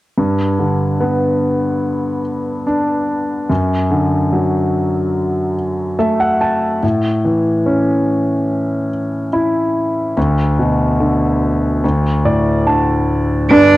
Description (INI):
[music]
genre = pop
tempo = 72 BPM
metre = 4/4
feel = straight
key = G major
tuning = A4 = 440 Hz
[part]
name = clear concert grand piano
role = accompaniment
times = 0.2-13.8 s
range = G1 to A5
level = -14 LUFS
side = equal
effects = cassette tape
[part]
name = clear cello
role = melody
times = 13.5-13.8 s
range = D4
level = -6 LUFS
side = right 3 dB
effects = cassette tape
[sound]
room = moderate spring reverb, RT60 1.9 s, small room reverb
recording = home recording on cassette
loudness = -14 LUFS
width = side -17 dB against mid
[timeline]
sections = 0.2-13.5 A section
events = grand piano fill 5.6-6.8, 11.8-13.5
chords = 0.2 G; 3.5 D/F#; 6.8 A; 10.2 Bm/D; 11.8 D5